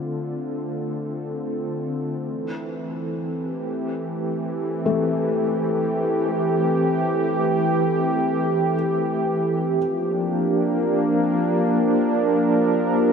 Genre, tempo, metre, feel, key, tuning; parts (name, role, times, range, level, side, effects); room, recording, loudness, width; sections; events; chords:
ambient; free time; A4 = 440 Hz
warm analog pad; sustained chords; 0.0-13.1 s; D3 to Bb4; -20 LUFS; right 1 dB; chorus, tremolo
felt-muted upright piano; arpeggios; 4.9-9.8 s; A3; -27 LUFS; left 4 dB; tape echo
wet huge ambient reverb, RT60 7.9 s; -20 LUFS; side -6 dB against mid
0.0-9.8 A section; 9.8-13.1 B section
fade-in on analog synth pad 0.0-9.8
0.0 Dm7; 2.3 Am7; 9.8 Gm7